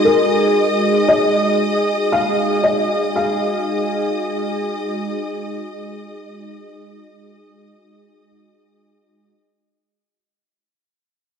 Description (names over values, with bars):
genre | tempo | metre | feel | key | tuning
ambient | 58 BPM | 4/4 | straight | unclear | A4 = 435 Hz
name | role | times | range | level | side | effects
felt-muted upright piano | melody | 0.0-8.3 s | Bb4 to F5 | -19 LUFS | left 1 dB | diffuse ambient delay
warm analog pad | sustained chords | 0.0-9.4 s | Ab3 to Eb5 | -19 LUFS | equal | chorus
clear symphonic violin section | texture | 0.0-9.4 s | Eb5 to Eb6 | -26 LUFS | left 1 dB | none
room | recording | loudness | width
wet scoring stage reverb, RT60 2.0 s | cassette tape | -16 LUFS | side -7 dB against mid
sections
0.0-9.3 A section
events
fade-out 0.0-9.3; filter sweep on analog synth pad 0.0-9.3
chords
0.0 Ab7(no3)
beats
0.03 | 1.06 2.10 3.13 4.17 | 5.20 6.24 7.27 8.30